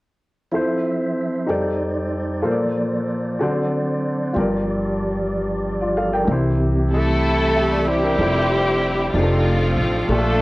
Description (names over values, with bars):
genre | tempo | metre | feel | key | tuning
gospel | 63 BPM (dotted quarters) | 6/8 | straight | F major | A4 = 440 Hz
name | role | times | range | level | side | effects
warm upright piano | accompaniment | 0.5-10.4 s | G2 to G5 | -22 LUFS | left 1 dB | none
mellow tonewheel organ | sustained chords | 0.5-8.2 s | F2 to E5 | -24 LUFS | right 1 dB | chorus vibrato, fast rotary speaker
upright bass | bass | 4.4-10.4 s | F1 to C2 | -22 LUFS | equal | none
breathy tenor saxophone | melody | 6.9-10.4 s | F3 to A3 | -22 LUFS | right 1 dB | tape echo
warm symphonic string section | melody | 6.9-10.4 s | A3 to A4 | -22 LUFS | left 1 dB | none
room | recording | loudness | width
wet large studio reverb, RT60 1.3 s, small room reverb | worn, warbling old tape, cassette tape, warbly pitch drift | -18 LUFS | side -20 dB against mid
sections
0.5-8.2 A section; 8.2-10.4 B section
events
none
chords
0.5 Fmaj7; 1.5 F13; 2.4 Bbmaj7; 3.4 D7; 4.4 Gm7; 6.3 C; 8.2 Fmaj7; 9.1 F13